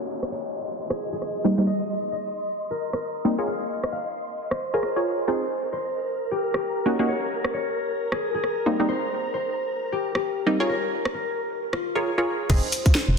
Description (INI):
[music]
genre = UK garage, two-step garage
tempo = 133 BPM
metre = 4/4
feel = swing 60% on 16ths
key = unclear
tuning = A4 = 440 Hz
[part]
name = concert harp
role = melody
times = 0.0-13.2 s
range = F4 to F5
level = -29 LUFS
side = left 2 dB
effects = dub echo
[part]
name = soft string machine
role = sustained chords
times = 0.0-12.0 s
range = Bb4 to C6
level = -32 LUFS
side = left 1 dB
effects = phaser, ensemble chorus, sidechain pumping
[part]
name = downlifter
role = sound effects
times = 0.0-1.7 s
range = none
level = -38 LUFS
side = equal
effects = none
[part]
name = garage drum kit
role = drums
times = 0.2-13.1 s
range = crash cymbal, hi-hat, rim click, snare drum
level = -28 LUFS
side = right 1 dB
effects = overdrive, low-pass filter on hats, studio reverb, low-pass filter on snare, low-pass filter on perc, low-pass filter on cymbals
[part]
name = punchy chord stab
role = stabs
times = 1.4-12.7 s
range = G3 to Db5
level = -25 LUFS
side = right 1 dB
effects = chorus, dub echo
[part]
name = organ-like FM bass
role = bass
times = 12.5-13.2 s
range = F1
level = -21 LUFS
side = equal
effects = sidechain pumping
[part]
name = electronic kick drum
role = drums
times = 12.5-12.9 s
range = none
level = -18 LUFS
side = equal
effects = overdrive, studio reverb
[part]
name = maracas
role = percussion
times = 12.5-13.1 s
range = none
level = -30 LUFS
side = left 4 dB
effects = none
[sound]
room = moderate lush hall reverb, RT60 2.3 s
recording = dense, heavily limited modern master, low-pass filter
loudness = -23 LUFS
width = side -5 dB against mid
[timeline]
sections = 0.0-12.5 A section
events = filter sweep on drum 0.0-12.5; filter sweep on synth stab 0.0-12.5; filter sweep on string machine 0.0-12.5; filter sweep 0.0-12.5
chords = 0.0 Eb7(no3); 1.4 Cm7; 3.5 Bbm7; 5.3 N.C.; 6.9 Ebm7; 8.7 Cm7; 10.7 Bbm7; 12.5 Fm7